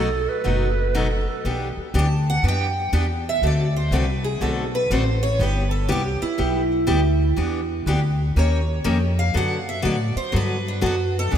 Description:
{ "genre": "acoustic string swing (jazz manouche)", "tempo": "121 BPM", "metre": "4/4", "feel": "swing 64% on 8ths", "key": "unclear", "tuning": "A4 = 441 Hz", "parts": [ { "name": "picked steel-string acoustic guitar", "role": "melody", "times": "0.0-11.4 s", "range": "D4 to A5", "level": "-25 LUFS", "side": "right 2 dB", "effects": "wide subtle chorus, ping-pong delay" }, { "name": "breathy clarinet", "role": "second line", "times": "0.0-1.4 s", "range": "A4 to B4", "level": "-27 LUFS", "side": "right 6 dB", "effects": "ping-pong delay" }, { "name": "picked steel-string acoustic guitar", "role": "accompaniment", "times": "0.0-11.4 s", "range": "B2 to A#4", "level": "-26 LUFS", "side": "left 2 dB", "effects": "none" }, { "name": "upright bass", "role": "bass", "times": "0.0-11.4 s", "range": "F#1 to A2", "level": "-22 LUFS", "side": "equal", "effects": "none" } ], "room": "moderate lush hall reverb, RT60 3.0 s", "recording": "dreamy mix soaked in reverb", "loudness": "-19 LUFS", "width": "side -9 dB against mid", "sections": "0.0-1.4 A section; 1.4-11.4 B section", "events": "steel-string acoustic guitar solo 1.4-11.4", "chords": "0.0 B7; 1.4 Em7; 3.4 D7; 5.4 G6; 7.4 Em7; 8.4 D#9; 9.4 D6", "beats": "0.46 0.95 | 1.45 1.94 2.44 2.93 | 3.42 3.92 4.41 4.91 | 5.40 5.90 6.39 6.88 | 7.38 7.87 8.37 8.86 | 9.36 9.85 10.34 10.84 | 11.33" }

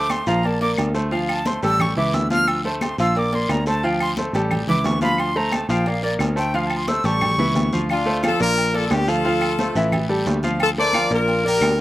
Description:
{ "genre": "latin, salsa", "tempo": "177 BPM", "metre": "4/4", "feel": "straight", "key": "D minor", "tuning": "A4 = 439 Hz", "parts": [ { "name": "breathy bright jazz flute", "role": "melody", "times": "0.0-7.8 s", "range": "D5 to F6", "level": "-23 LUFS", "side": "right 1 dB", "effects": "slapback echo" }, { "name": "bright grand piano", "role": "accompaniment", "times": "0.0-11.7 s", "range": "E3 to F5", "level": "-23 LUFS", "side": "equal", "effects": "slapback echo" }, { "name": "picked electric bass", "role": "bass", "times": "0.0-11.8 s", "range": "A1 to D2", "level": "-24 LUFS", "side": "equal", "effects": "none" }, { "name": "claves", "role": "percussion", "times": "0.1-11.8 s", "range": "none", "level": "-29 LUFS", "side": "left 4 dB", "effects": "none" }, { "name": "congas", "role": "percussion", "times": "0.1-11.8 s", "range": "none", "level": "-29 LUFS", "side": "left 2 dB", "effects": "none" }, { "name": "guiro", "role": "percussion", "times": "0.1-11.8 s", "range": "none", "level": "-36 LUFS", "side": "left 3 dB", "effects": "none" }, { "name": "timbales and agogo bells", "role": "percussion", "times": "0.1-11.8 s", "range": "none", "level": "-31 LUFS", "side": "right 4 dB", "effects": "slapback echo" }, { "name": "brilliant horn section", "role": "melody", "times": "7.9-11.8 s", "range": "D4 to D5", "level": "-20 LUFS", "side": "left 2 dB", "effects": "none" } ], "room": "little or no reverb", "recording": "recorded outdoors, with no room sound", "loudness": "-18 LUFS", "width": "side -16 dB against mid", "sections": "0.0-7.9 A section; 7.9-11.8 B section", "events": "flute solo 0.0-7.9; drum fill 7.4-7.9", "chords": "0.4 Bb; 1.1 Dm7; 1.8 A7; 2.5 Dm7; 3.2 Bb; 3.8 Dm7; 4.5 A7; 5.2 Dm7; 5.9 Bb; 6.5 Dm7; 7.2 A7; 7.9 Dm7; 8.6 Bb; 9.2 Dm7; 9.9 A5; 10.6 Dm7; 11.3 Bb", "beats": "0.10 0.44 0.78 | 1.12 1.46 1.79 2.13 | 2.47 2.81 3.15 3.49 | 3.83 4.17 4.51 4.85 | 5.19 5.53 5.87 6.20 | 6.54 6.88 7.22 7.56 | 7.90 8.23 8.57 8.91 | 9.25 9.59 9.93 10.26 | 10.60 10.94 11.28 11.62" }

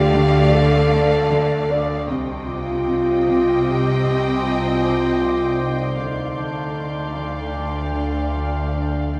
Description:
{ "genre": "cinematic, suspense film score", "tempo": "77 BPM", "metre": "5/4", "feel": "straight", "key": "unclear", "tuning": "A4 = 440 Hz", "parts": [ { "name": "warm studio violin section", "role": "melody", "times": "0.0-9.2 s", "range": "F5 to G5", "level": "-32 LUFS", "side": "equal", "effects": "none" }, { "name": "warm studio violin section", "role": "second line", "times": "0.0-9.2 s", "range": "D5 to Eb5", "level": "-32 LUFS", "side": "equal", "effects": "none" }, { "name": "rich studio viola section", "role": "accompaniment", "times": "0.0-9.2 s", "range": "A3 to C4", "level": "-32 LUFS", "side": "equal", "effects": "none" }, { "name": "mellow French horn section", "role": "sustained chords", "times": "0.0-9.1 s", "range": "D4 to D5", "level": "-24 LUFS", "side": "equal", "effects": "none" }, { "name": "warm studio cello section", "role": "bass", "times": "0.0-9.2 s", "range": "C3 to D3", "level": "-27 LUFS", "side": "equal", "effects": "none" }, { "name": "warm studio double bass section", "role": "bass", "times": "0.0-9.2 s", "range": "C2 to D2", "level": "-31 LUFS", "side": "equal", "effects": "none" }, { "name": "overtone-sweeping drone", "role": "drone", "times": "0.3-9.2 s", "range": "C2 to D2", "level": "-30 LUFS", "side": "equal", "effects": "chorus, built-in reverb" }, { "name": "warm studio cello section", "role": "riff", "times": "0.1-9.2 s", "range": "C3 to D4", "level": "-33 LUFS", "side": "equal", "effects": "none" }, { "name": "vibraphone with hard mallets", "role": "texture", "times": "0.2-9.2 s", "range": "A4 to F6", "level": "-41 LUFS", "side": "equal", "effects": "none" }, { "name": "rich studio violin section", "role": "texture", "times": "2.1-9.2 s", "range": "C6 to G6", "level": "-34 LUFS", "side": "equal", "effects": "none" } ], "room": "wet scoring stage reverb, RT60 1.7 s", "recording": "none", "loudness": "-20 LUFS", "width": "mono", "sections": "0.0-9.2 A section", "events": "none", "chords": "0.0 Dm; 2.1 Cm; 6.0 Dm", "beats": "0.54 1.32 | 2.10 2.88 3.66 4.44 5.22 | 6.00 6.78 7.56 8.34 9.12" }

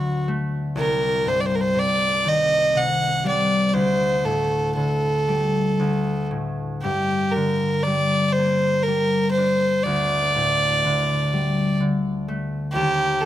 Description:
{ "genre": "celtic folk, Celtic slow air", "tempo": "57-63 BPM", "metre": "3/4", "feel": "rubato", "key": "unclear", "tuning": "A4 = 435 Hz", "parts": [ { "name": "warm fiddle", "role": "melody", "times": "0.0-13.3 s", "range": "F#4 to F#5", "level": "-21 LUFS", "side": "right 1 dB", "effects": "none" }, { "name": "concert harp", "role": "accompaniment", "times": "0.0-13.3 s", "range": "C2 to D4", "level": "-23 LUFS", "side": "left 2 dB", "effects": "none" } ], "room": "light reverb", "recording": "close, detailed microphones", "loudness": "-19 LUFS", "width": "side -12 dB against mid", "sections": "0.0-13.3 A section", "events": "none", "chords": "0.0 D; 0.8 Cm; 3.7 Dsus4; 5.8 D5; 6.8 Gm; 9.9 Dsus4; 12.7 Cm/Eb (rootless)", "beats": "| 0.77 1.77 2.76 | 3.74 4.74 5.78 | 6.82 7.86 8.87 | 9.86 10.83 11.79 | 12.75" }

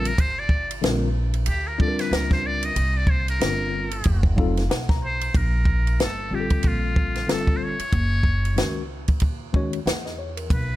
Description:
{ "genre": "hip hop, jazz-hop", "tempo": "93 BPM", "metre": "4/4", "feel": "swing 58% on 16ths", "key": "Bb major", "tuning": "A4 = 442 Hz", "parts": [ { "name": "trumpet with metal mute", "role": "melody", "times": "0.0-10.8 s", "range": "F4 to Eb5", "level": "-28 LUFS", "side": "equal", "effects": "slapback echo" }, { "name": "mellow tine electric piano", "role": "accompaniment", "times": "0.0-10.7 s", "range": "D3 to Bb5", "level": "-28 LUFS", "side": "left 3 dB", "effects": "medium stereo tremolo" }, { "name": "upright bass", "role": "bass", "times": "0.0-10.8 s", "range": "F1 to Fb2", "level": "-25 LUFS", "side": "equal", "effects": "none" }, { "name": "compact cocktail drum kit", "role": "drums", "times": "0.1-10.7 s", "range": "hi-hat, kick drum, ride cymbal, snare drum", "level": "-23 LUFS", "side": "equal", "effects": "none" } ], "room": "studio ambience", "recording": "none", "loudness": "-20 LUFS", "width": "side -16 dB against mid", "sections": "0.0-5.3 A section; 5.3-10.8 B section", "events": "muted trumpet solo 0.0-5.3; tine electric piano fill 4.1-5.3", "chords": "0.2 Gm11; 2.8 C5; 4.1 F7b9; 5.3 Bbmaj9; 7.9 Gb9", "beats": "| 0.18 0.83 1.47 2.12 | 2.76 3.41 4.05 4.70 | 5.34 5.99 6.63 7.28 | 7.92 8.57 9.21 9.86 | 10.50" }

